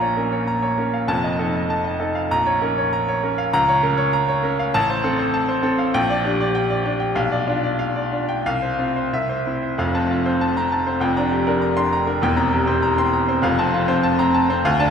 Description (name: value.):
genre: classical, virtuoso piano study.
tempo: 98 BPM.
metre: 2/4.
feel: rubato.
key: Bb minor, F major from 4.7 s.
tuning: A4 = 440 Hz.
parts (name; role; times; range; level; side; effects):
bright baby grand piano; solo; 0.0-14.9 s; E1 to C6; -18 LUFS; equal; none.
room: wet church reverb, RT60 3.1 s.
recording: recorded in a church or concert hall.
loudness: -18 LUFS.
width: side -7 dB against mid.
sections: 0.0-9.8 A section; 9.8-14.9 B section.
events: none.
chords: 0.0 Bbm; 1.1 F7; 2.3 Bbm; 3.5 Bbm/Db; 4.7 F/A; 5.9 Gm/Bb; 7.2 G7/B; 8.4 F5/C; 9.1 C; 9.8 F; 11.0 Gm7/F; 12.2 C7/E; 13.4 F.